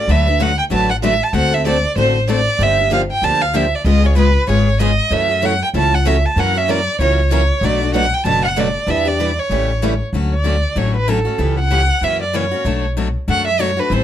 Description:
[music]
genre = acoustic string swing (jazz manouche)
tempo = 191 BPM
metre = 4/4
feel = swing 58% on 8ths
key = D major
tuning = A4 = 440 Hz
[part]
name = rich violin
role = melody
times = 0.0-14.0 s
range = A4 to A5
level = -18 LUFS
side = right 2 dB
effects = none
[part]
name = picked steel-string acoustic guitar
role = accompaniment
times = 0.0-14.0 s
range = B2 to B4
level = -21 LUFS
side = left 6 dB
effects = none
[part]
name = picked steel-string acoustic guitar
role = accompaniment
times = 0.1-9.9 s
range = B2 to B4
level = -24 LUFS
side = right 5 dB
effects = none
[part]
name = upright bass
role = bass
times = 0.1-14.0 s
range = F#1 to F#2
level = -18 LUFS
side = equal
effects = none
[sound]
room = light reverb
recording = close, detailed microphones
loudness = -14 LUFS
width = side -10 dB against mid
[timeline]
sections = 0.1-10.1 A section; 10.1-14.0 B section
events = violin solo 10.1-14.0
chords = 0.1 D69; 1.3 D7; 2.6 Gm7; 3.8 C#7; 5.1 F#m7; 6.4 F#7; 7.6 Bm7; 8.9 Em7; 9.5 A7; 10.1 Dmaj7; 11.4 C#m7b5; 12.0 F#7; 12.6 Bm7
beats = | 0.08 0.40 0.71 1.02 | 1.34 1.65 1.96 2.28 | 2.59 2.91 3.22 3.53 | 3.85 4.16 4.48 4.79 | 5.10 5.42 5.73 6.05 | 6.36 6.67 6.99 7.30 | 7.62 7.93 8.25 8.56 | 8.88 9.19 9.50 9.82 | 10.13 10.45 10.76 11.08 | 11.39 11.71 12.02 12.33 | 12.65 12.96 13.28 13.59 | 13.91

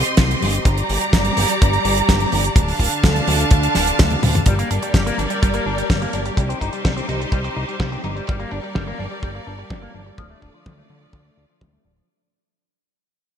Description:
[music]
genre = italo disco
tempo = 126 BPM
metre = 4/4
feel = straight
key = G minor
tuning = A4 = 440 Hz
[part]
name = clear symphonic string section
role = sustained chords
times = 0.0-12.1 s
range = D3 to C6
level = -22 LUFS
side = right 1 dB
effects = none
[part]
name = fat analog bass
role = bass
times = 0.0-12.0 s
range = D1 to D2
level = -23 LUFS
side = equal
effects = none
[part]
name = damped 70s drum kit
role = drums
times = 0.1-12.1 s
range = hi-hat, snare drum, toms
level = -22 LUFS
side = right 1 dB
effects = low-pass filter on hats, low-pass filter on toms, low-pass filter on snare, low-pass filter on room, gated reverb
[part]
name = kick drum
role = drums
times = 0.2-11.7 s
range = none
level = -16 LUFS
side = equal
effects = none
[part]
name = electric guitar with an envelope filter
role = arpeggios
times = 4.5-12.1 s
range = F3 to Eb4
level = -28 LUFS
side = left 3 dB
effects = phaser, low-pass filter, digital delay
[sound]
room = moderate lush hall reverb, RT60 2.2 s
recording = bright 1980s-style digital production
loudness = -16 LUFS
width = side -8 dB against mid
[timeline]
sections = 0.0-4.5 A section; 4.5-12.1 B section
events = drum fill 4.0-4.5; fade-out 4.5-12.1; filter sweep on drum 4.5-12.1; filter sweep on clean electric guitar 4.5-12.1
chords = 0.0 Cm; 0.7 Gm; 2.6 Dm; 4.5 Gm; 6.4 Cm; 8.3 Gm; 10.2 Dm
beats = 0.18 | 0.66 1.13 1.61 2.09 | 2.56 3.04 3.52 3.99 | 4.47 4.94 5.42 5.90 | 6.37 6.85 7.33 7.80 | 8.28 8.75 9.23 9.71 | 10.18 10.66 11.13 11.61

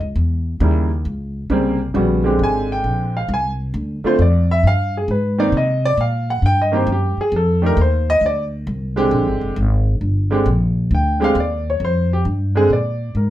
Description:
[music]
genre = jazz piano trio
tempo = 134 BPM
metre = 4/4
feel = swing 67% on 8ths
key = Bb mixolydian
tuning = A4 = 440 Hz
[part]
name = clear concert grand piano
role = melody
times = 0.0-13.3 s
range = C#3 to Ab5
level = -18 LUFS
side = right 1 dB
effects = none
[part]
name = upright bass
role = bass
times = 0.0-13.3 s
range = F1 to C3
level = -18 LUFS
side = equal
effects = none
[sound]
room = moderate studio reverb, RT60 0.5 s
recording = band playing live in one room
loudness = -16 LUFS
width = side -13 dB against mid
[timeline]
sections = 0.0-12.7 A section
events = grand piano solo 0.0-12.7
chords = 0.2 Edim7; 1.9 Bb13; 3.7 Dm7; 4.6 G7b9b13; 5.5 Cm7; 7.3 F13; 9.1 Bb13; 11.8 Fsus2; 12.7 Bb7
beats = | 0.16 0.61 1.05 1.50 | 1.95 2.40 2.85 3.29 | 3.74 4.19 4.64 5.09 | 5.53 5.98 6.43 6.88 | 7.33 7.77 8.22 8.67 | 9.12 9.57 10.02 10.46 | 10.91 11.36 11.81 12.26 | 12.71 13.15

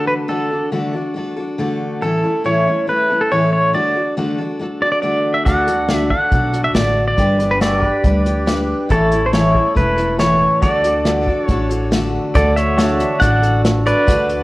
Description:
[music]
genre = honky-tonk and classic country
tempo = 139 BPM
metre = 4/4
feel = straight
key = D major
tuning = A4 = 440 Hz
[part]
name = pedal steel guitar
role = melody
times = 0.0-14.4 s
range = A4 to F#5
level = -17 LUFS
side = equal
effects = none
[part]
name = picked steel-string acoustic guitar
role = accompaniment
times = 0.0-14.4 s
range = A2 to B4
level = -20 LUFS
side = left 1 dB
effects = none
[part]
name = pedal steel guitar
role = sustained chords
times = 5.5-14.4 s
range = D4 to D5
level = -25 LUFS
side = equal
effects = none
[part]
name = upright bass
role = bass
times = 5.5-14.4 s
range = E1 to D2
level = -21 LUFS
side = equal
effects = none
[part]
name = unplugged drum kit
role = drums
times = 5.5-14.4 s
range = hi-hat, kick drum, snare drum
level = -19 LUFS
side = equal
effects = none
[sound]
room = wet large studio reverb, RT60 1.1 s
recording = worn, warbling old tape, cassette tape, warbly pitch drift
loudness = -14 LUFS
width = side -19 dB against mid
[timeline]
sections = 0.0-12.4 A section; 12.4-14.4 B section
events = none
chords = 0.0 D; 2.0 A; 3.7 D; 7.2 G; 8.9 A; 10.6 D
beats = | 0.29 0.72 1.16 1.59 | 2.02 2.45 2.88 3.31 | 3.74 4.17 4.60 5.03 | 5.46 5.89 6.32 6.75 | 7.18 7.61 8.04 8.47 | 8.90 9.33 9.77 10.20 | 10.63 11.06 11.49 11.92 | 12.35 12.78 13.21 13.64 | 14.08

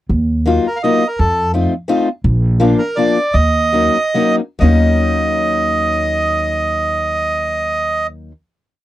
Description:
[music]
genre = musette waltz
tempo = 131-171 BPM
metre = 3/4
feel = straight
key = Eb minor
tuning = A4 = 441 Hz
[part]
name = upright bass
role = bass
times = 0.1-8.3 s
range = Bb1 to F2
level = -17 LUFS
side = equal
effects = none
[part]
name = picked acoustic archtop guitar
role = accompaniment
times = 0.5-8.3 s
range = F3 to F4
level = -17 LUFS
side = left 3 dB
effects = none
[part]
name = bandoneon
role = melody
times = 0.7-8.1 s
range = A4 to F5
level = -16 LUFS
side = right 2 dB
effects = none
[sound]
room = light reverb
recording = dry, close 1970s-style studio recording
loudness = -13 LUFS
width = side -14 dB against mid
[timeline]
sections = 0.1-4.6 A section; 4.6-7.3 final chord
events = slowing down 2.2-4.6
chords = 0.1 Ebmadd9; 1.2 F7; 2.2 Bb; 3.3 Ebm7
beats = | 0.11 0.47 0.83 | 1.19 1.54 1.89 | 2.25 2.61 2.97 | 3.35 3.74 4.17 | 4.62 5.08 5.53 | 5.97 6.42 6.87

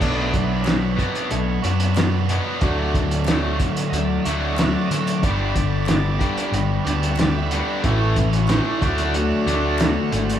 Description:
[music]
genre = classic rock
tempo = 92 BPM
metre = 4/4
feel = straight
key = unclear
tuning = A4 = 440 Hz
[part]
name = overdriven tonewheel organ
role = sustained chords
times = 0.0-10.4 s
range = D3 to F#5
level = -29 LUFS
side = left 1 dB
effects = slow rotary speaker
[part]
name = overdriven electric guitar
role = riff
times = 0.0-10.4 s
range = G2 to A4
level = -26 LUFS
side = right 6 dB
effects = none
[part]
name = tight distorted guitar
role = riff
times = 0.0-10.4 s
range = G2 to D4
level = -24 LUFS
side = left 4 dB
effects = distortion
[part]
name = picked electric bass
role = bass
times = 0.0-10.4 s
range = G1 to D3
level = -24 LUFS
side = equal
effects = none
[part]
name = cloth-damped thuddy drum kit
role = drums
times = 0.0-10.4 s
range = crash cymbal, hi-hat, kick drum, snare drum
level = -23 LUFS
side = equal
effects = none
[part]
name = group handclap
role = percussion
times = 0.6-9.9 s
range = none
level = -41 LUFS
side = left 4 dB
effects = none
[sound]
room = moderate large studio reverb, RT60 1.2 s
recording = band playing live in one room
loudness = -18 LUFS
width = side -10 dB against mid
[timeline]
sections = 0.0-10.4 A section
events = tonewheel organ solo 0.0-10.4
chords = 0.0 Bm7; 2.6 D; 5.2 G; 7.8 A; 8.8 D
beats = | 0.01 0.66 1.31 1.97 | 2.62 3.27 3.93 4.58 | 5.23 5.89 6.54 7.19 | 7.84 8.50 9.15 9.80

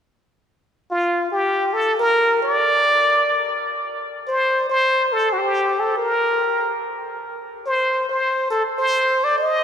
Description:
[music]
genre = jazz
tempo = 142 BPM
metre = 4/4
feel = swing 64% on 8ths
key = unclear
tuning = A4 = 442 Hz
[part]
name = trumpet with plunger mute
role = solo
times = 0.9-9.6 s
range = F4 to Eb5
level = -17 LUFS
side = equal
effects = none
[sound]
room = wet cathedral reverb, RT60 5.7 s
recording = recorded in a church or concert hall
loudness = -17 LUFS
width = side -8 dB against mid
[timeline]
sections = 0.9-9.6 A section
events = none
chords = none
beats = | 0.89 1.31 1.74 2.16 | 2.58 3.00 3.43 3.85 | 4.28 4.70 5.12 5.54 | 5.97 6.39 6.82 7.24 | 7.66 8.09 8.51 8.94 | 9.36

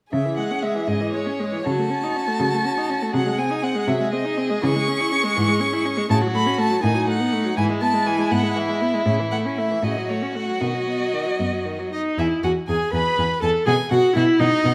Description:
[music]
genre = quick classical-period movement for string quartet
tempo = 75-83 BPM (dotted quarters)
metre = 6/8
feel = rubato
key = C# minor, E major from 6.1 s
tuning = A4 = 440 Hz
[part]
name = rich violin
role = melody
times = 0.1-14.7 s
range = C#5 to C#6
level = -28 LUFS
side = equal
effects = none
[part]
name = rich violin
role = second line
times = 0.1-14.7 s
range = D#4 to B5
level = -30 LUFS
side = equal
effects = none
[part]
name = rich viola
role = accompaniment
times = 0.1-14.7 s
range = C#3 to B4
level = -25 LUFS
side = equal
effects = none
[part]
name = rich cello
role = bass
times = 0.1-14.7 s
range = E2 to C#3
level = -27 LUFS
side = equal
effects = none
[sound]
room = moderate recital hall reverb, RT60 1.7 s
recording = none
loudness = -21 LUFS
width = mono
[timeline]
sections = 0.1-12.2 A section; 12.2-14.7 B section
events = none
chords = 0.1 C#m; 1.7 D#m7b5/C#; 3.1 G#7/B#; 4.6 C#m; 6.1 F#m/A; 6.8 B7/A; 7.6 E/G#; 9.1 A; 9.8 F#m/A; 10.6 B; 12.2 E; 13.7 B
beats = | 0.13 0.88 | 1.66 2.40 | 3.14 3.88 | 4.64 5.37 | 6.11 6.84 | 7.57 8.32 | 9.06 9.83 | 10.61 11.40 | 12.19 12.94 | 13.67 14.40

